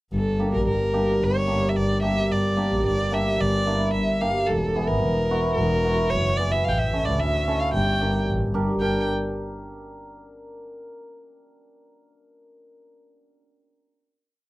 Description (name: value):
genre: klezmer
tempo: 110 BPM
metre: 4/4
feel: straight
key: G dorian sharp4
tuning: A4 = 439 Hz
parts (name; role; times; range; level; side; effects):
- rich violin; melody; 0.1-9.1 s; A4 to G5; -25 LUFS; equal; none
- rich double bass; bass; 0.1-9.1 s; E1 to D2; -24 LUFS; equal; none
- cimbalom; accompaniment; 0.4-9.1 s; Bb3 to Bb4; -27 LUFS; right 1 dB; none
room: little or no reverb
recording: dry, close 1970s-style studio recording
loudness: -20 LUFS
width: side -18 dB against mid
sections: 0.1-8.8 A section; 8.8-10.9 final chord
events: none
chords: 0.1 Gm; 4.5 E; 6.7 A; 7.7 Gm